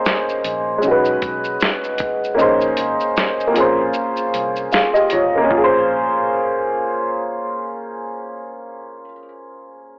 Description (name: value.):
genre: lo-fi hip hop.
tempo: 77 BPM.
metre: 4/4.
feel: swing 59% on 16ths.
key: Bb minor.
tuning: A4 = 440 Hz.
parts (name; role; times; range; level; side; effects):
warm upright piano; accompaniment; 0.0-10.0 s; G#3 to F5; -20 LUFS; equal; cassette tape, low-pass filter.
lo-fi sampler-style drum kit; drums; 0.1-5.7 s; hi-hat, kick drum, shaker, snare drum; -24 LUFS; equal; none.
vintage muted fingered electric bass; bass; 0.4-9.1 s; Ab1 to C2; -40 LUFS; equal; none.
room: light reverb.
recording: home recording on cassette, telephone sound.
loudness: -18 LUFS.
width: mono.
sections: 0.0-5.5 A section; 5.5-8.6 B section.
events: kick muted 2.4-5.5.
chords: 0.0 Bbm11; 0.8 B69; 2.4 Bbm11; 3.6 Bbm9.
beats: 0.05 0.83 1.61 | 2.39 3.17 3.95 4.73 | 5.51 6.29 7.07 7.85.